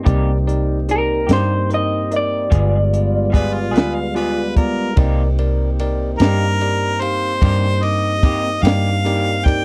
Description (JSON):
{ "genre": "slow blues", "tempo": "49 BPM (dotted quarters)", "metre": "12/8", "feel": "straight", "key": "C minor", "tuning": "A4 = 440 Hz", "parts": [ { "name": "electric guitar through a small old amp", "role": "melody", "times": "0.0-4.5 s", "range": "Bb4 to Eb5", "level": "-24 LUFS", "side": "equal", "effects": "none" }, { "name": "electric guitar through a small old amp", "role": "accompaniment", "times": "0.0-9.3 s", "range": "C3 to Ab4", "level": "-28 LUFS", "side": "equal", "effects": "harmonic tremolo" }, { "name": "tonewheel organ", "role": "sustained chords", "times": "0.0-9.6 s", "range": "G3 to G4", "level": "-28 LUFS", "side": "equal", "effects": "slow rotary speaker" }, { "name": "vintage muted fingered electric bass", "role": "bass", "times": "0.0-9.6 s", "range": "G1 to G2", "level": "-21 LUFS", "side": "equal", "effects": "none" }, { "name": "bell-like tine electric piano", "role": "accompaniment", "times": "0.1-9.6 s", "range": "B3 to D6", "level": "-29 LUFS", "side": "equal", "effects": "none" }, { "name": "compact cocktail drum kit", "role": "drums", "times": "0.1-9.6 s", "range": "hi-hat, kick drum, ride cymbal, snare drum", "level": "-17 LUFS", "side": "equal", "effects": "none" }, { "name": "bright harmonica", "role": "second line", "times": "3.3-9.6 s", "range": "F4 to G5", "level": "-24 LUFS", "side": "equal", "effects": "overdrive" } ], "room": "little or no reverb", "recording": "dry, close 1970s-style studio recording", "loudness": "-17 LUFS", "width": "mono", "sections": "0.0-5.0 A section; 5.0-9.6 B section", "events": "harmonica solo 5.0-9.6", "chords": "0.0 Cm7; 2.5 G7b9; 5.0 Cm7" }